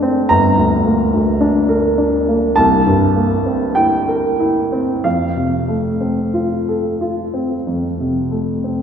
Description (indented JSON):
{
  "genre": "classical, romantic nocturne for solo piano",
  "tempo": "45-54 BPM",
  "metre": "4/4",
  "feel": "rubato",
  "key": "unclear",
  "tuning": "A4 = 435 Hz",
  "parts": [
    { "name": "warm baby grand piano", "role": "solo", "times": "0.0-8.8 s", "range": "F#1 to Bb5", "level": "-14 LUFS", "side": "equal", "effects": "none" }
  ],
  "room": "wet concert hall reverb, RT60 2.4 s",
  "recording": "heard from further back in the room",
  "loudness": "-14 LUFS",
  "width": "side -8 dB against mid",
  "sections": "0.0-8.8 A section",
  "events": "none",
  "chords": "0.3 Gm; 2.6 C7; 5.0 F"
}